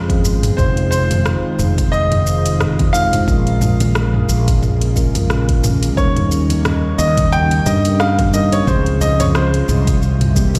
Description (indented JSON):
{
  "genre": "sunset chillout",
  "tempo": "89 BPM",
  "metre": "4/4",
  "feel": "swing 56% on 16ths",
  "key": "F minor",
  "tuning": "A4 = 440 Hz",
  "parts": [
    { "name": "mellow tine electric piano", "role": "accompaniment", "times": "0.0-10.6 s", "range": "E3 to C5", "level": "-25 LUFS", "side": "equal", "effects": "digital delay, shimmer reverb" },
    { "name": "lush unison pad", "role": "sustained chords", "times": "0.0-10.6 s", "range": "C3 to C5", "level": "-27 LUFS", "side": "equal", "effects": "chorus, shimmer reverb" },
    { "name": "mellow fretless electric bass", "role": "bass", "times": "0.0-10.6 s", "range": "F1 to G2", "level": "-19 LUFS", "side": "equal", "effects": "none" },
    { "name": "deep house drum kit", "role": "drums", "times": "0.1-10.6 s", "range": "hi-hat, rim click, shaker, toms", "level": "-24 LUFS", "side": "equal", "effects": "none" },
    { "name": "electronic kick drum", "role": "drums", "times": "0.1-10.5 s", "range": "none", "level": "-20 LUFS", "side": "equal", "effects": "none" },
    { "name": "clear baby grand piano", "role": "melody", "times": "0.6-10.6 s", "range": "C5 to G5", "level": "-23 LUFS", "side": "equal", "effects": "delay, shimmer reverb" },
    { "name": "congas and bongos", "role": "percussion", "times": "1.1-10.6 s", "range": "none", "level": "-27 LUFS", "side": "equal", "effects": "none" }
  ],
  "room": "light reverb, digital ambience",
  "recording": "played on a big sound system in a bare room, stone room reverb",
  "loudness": "-15 LUFS",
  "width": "mono",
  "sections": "0.0-10.6 A section",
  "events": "none",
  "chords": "0.0 Dbmaj7; 0.6 Fm7; 3.3 Bbm7; 6.0 Eb7; 8.7 Dbmaj7; 10.0 C7"
}